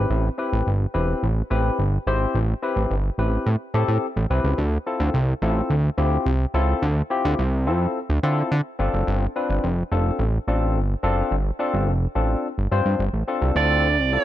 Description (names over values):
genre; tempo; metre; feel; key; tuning
early-eighties boogie funk; 107 BPM; 4/4; straight; D dorian; A4 = 440 Hz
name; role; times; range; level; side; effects
barky tine electric piano; accompaniment; 0.0-14.2 s; C4 to C5; -25 LUFS; left 3 dB; analog chorus
fat analog bass; bass; 0.0-14.2 s; E1 to D3; -21 LUFS; right 1 dB; none
breathy alto saxophone; melody; 13.6-14.2 s; C5 to D5; -20 LUFS; right 7 dB; none
room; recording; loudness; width
small room ambience; none; -20 LUFS; side -13 dB against mid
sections
0.0-13.6 A section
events
none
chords
0.0 Am9; 4.6 Dm7; 8.8 G9sus4; 13.6 Dm7